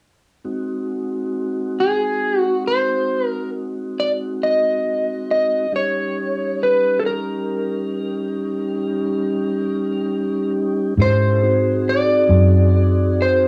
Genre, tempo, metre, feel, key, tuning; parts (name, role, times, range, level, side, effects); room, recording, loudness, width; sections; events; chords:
slow blues; 46 BPM (dotted quarters); 12/8; straight; A4 = 442 Hz
mellow tonewheel organ; sustained chords; 0.4-13.5 s; G3 to A4; -25 LUFS; equal; slow rotary speaker
electric slide guitar; melody; 1.8-13.5 s; Ab4 to Eb5; -21 LUFS; equal
vintage muted fingered electric bass; bass; 11.0-13.5 s; Gb2 to Ab2; -18 LUFS; equal
light reverb; home recording on cassette, small room ambience; -20 LUFS; mono
0.5-11.0 A section; 11.0-13.5 B section
0.5 Ab7; 5.7 Eb7; 11.0 Ab7